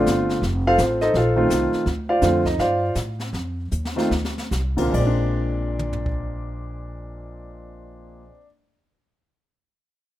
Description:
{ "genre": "jazz piano trio", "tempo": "141-166 BPM", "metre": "4/4", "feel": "swing 63% on 8ths", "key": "Bb major", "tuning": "A4 = 439 Hz", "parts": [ { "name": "warm grand piano", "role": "melody", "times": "0.0-8.5 s", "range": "Bb2 to F5", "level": "-21 LUFS", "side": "equal", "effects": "none" }, { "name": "upright bass", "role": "bass", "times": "0.0-8.3 s", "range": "F1 to A2", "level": "-25 LUFS", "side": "equal", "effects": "none" }, { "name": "jazz brush drum kit", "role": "drums", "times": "0.1-6.1 s", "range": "brushed snare drum, crash cymbal, hi-hat, kick drum, snare drum, toms", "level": "-31 LUFS", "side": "left 1 dB", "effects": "none" } ], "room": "light reverb", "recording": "rough home demo mix", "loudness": "-19 LUFS", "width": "side -14 dB against mid", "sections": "0.0-4.9 A section; 4.9-8.3 B section", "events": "slowing down 1.9-4.9; drum fill 3.7-4.5", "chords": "0.4 F7; 1.9 Dm7; 3.3 F7(no3); 4.9 Bb9", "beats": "0.06 | 0.42 0.78 1.14 1.50 | 1.86 2.22 2.59 2.96 | 3.33 3.72 4.11 4.52 | 4.94 5.36 5.79 6.21 | 6.64 7.06 7.49 7.91" }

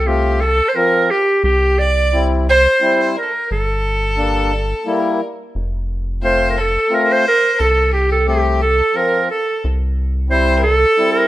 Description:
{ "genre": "klezmer", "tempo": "88 BPM", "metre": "3/4", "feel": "straight", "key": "F major", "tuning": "A4 = 442 Hz", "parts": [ { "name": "bright clarinet", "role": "melody", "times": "0.0-11.3 s", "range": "G4 to D5", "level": "-15 LUFS", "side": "right 2 dB", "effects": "plate reverb" }, { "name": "clear violin", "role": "second line", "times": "0.0-11.3 s", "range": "G4 to D5", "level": "-24 LUFS", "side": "left 2 dB", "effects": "plate reverb" }, { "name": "rubbery square bass", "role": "bass", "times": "0.0-10.9 s", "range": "F1 to C2", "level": "-18 LUFS", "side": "equal", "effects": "none" }, { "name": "mellow accordion", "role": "accompaniment", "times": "0.1-11.3 s", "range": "F3 to G4", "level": "-20 LUFS", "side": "left 3 dB", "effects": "plate reverb" } ], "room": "wet studio reverb, RT60 0.6 s", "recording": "rough home demo mix", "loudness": "-13 LUFS", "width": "side -15 dB against mid", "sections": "0.0-11.3 A section", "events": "none", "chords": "0.0 F; 1.4 C; 3.5 Gm; 5.6 F; 9.6 C", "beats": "0.06 0.75 | 1.44 2.13 2.81 | 3.50 4.18 4.87 | 5.55 6.24 6.92 | 7.60 8.28 8.95 | 9.63 10.30 10.98" }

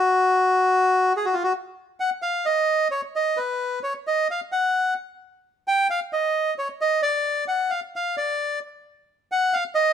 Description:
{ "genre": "tango", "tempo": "131 BPM", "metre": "4/4", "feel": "rubato", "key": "Eb minor", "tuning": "A4 = 441 Hz", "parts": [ { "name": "bandoneon", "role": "solo", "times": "0.0-9.9 s", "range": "E#4 to G5", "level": "-20 LUFS", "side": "equal", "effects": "none" } ], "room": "moderate stone room reverb, RT60 1.1 s", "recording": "band playing live in one room", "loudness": "-21 LUFS", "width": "side -8 dB against mid", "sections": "0.0-1.8 A section; 1.8-9.9 B section", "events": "none", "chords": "none", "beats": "0.37 0.83 1.30 | 1.76 2.22 2.68 3.14 | 3.60 4.05 4.51 4.97 | 5.42 5.88 6.33 6.79 | 7.25 7.70 8.16 8.62 | 9.08 9.54" }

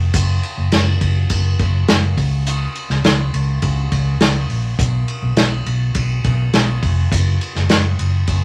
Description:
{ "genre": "piano-driven pop", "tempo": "103 BPM", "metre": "4/4", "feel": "straight", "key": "F# major", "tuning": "A4 = 439 Hz", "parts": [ { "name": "vintage muted fingered electric bass", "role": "bass", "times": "0.0-8.4 s", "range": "E#1 to C#2", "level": "-20 LUFS", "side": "equal", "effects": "none" }, { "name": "unplugged drum kit", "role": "drums", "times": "0.1-8.4 s", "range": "hi-hat, kick drum, ride cymbal, snare drum", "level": "-21 LUFS", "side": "equal", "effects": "none" } ], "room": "wet club reverb, RT60 0.5 s", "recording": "vinyl crackle", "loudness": "-17 LUFS", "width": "mono", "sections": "0.0-8.4 A section", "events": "none", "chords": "none", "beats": "| 0.14 0.72 1.30 1.88 | 2.46 3.04 3.63 4.21 | 4.79 5.37 5.95 6.54 | 7.12 7.70 8.28" }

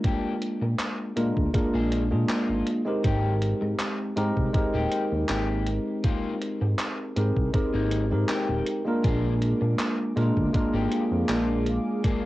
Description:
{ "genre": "vaporwave", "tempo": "80 BPM", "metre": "4/4", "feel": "straight", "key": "Ab lydian", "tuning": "A4 = 441 Hz", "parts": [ { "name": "bell-like tine electric piano", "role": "accompaniment", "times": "0.0-12.3 s", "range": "Ab3 to Bb4", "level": "-26 LUFS", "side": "equal", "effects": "lush chorus, vintage 12-bit sampler grit, tape echo" }, { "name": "electric guitar at the edge of break-up", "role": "riff", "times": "0.0-12.3 s", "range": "Bb3 to Ab4", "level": "-34 LUFS", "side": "left 5 dB", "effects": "wide subtle chorus, vintage 12-bit sampler grit, tape echo" }, { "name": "electronic kick drum", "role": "drums", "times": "0.0-12.2 s", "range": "none", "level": "-26 LUFS", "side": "equal", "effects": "cassette tape" }, { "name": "gated 80s digital drum machine", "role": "drums", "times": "0.0-12.2 s", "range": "handclaps, hi-hat", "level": "-33 LUFS", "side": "equal", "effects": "gated reverb, cassette tape" }, { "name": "chorused synth bass", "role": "bass", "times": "0.6-11.8 s", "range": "Eb1 to Bb2", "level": "-26 LUFS", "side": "equal", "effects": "none" }, { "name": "lush unison pad", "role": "sustained chords", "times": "9.0-12.3 s", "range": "Ab4 to D6", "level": "-37 LUFS", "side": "right 2 dB", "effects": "chorus" } ], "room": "light reverb", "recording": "home recording on cassette", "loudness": "-23 LUFS", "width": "side -17 dB against mid", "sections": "0.0-12.3 A section", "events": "none", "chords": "0.0 Bb7; 3.0 Abmaj9; 9.0 Bb7", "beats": "| 0.04 0.79 1.54 2.29 | 3.04 3.79 4.54 5.29 | 6.04 6.79 7.54 8.29 | 9.04 9.79 10.54 11.29 | 12.04" }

